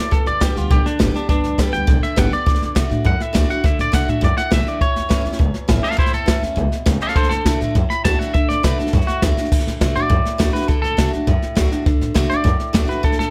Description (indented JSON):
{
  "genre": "rockabilly",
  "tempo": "204 BPM",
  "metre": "4/4",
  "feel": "straight",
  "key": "D major",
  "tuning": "A4 = 444 Hz",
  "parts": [
    { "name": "twangy electric guitar", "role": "melody", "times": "0.0-13.3 s", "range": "D4 to B5", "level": "-25 LUFS", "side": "equal", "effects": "tape echo" },
    { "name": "picked steel-string acoustic guitar", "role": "accompaniment", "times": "0.0-13.3 s", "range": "E2 to G4", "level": "-26 LUFS", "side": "equal", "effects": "none" },
    { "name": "upright bass", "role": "bass", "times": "0.1-13.3 s", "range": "G1 to C3", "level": "-25 LUFS", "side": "equal", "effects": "none" },
    { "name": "jazz brush drum kit", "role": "drums", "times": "0.1-13.2 s", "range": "crash cymbal, hi-hat, kick drum, snare drum", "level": "-21 LUFS", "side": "equal", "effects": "none" }
  ],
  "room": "light reverb, small room ambience",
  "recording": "none",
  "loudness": "-18 LUFS",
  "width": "mono",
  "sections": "0.0-9.5 A section; 9.5-13.3 A section",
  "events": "none",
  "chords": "0.1 G; 2.5 D; 4.8 A; 7.2 D"
}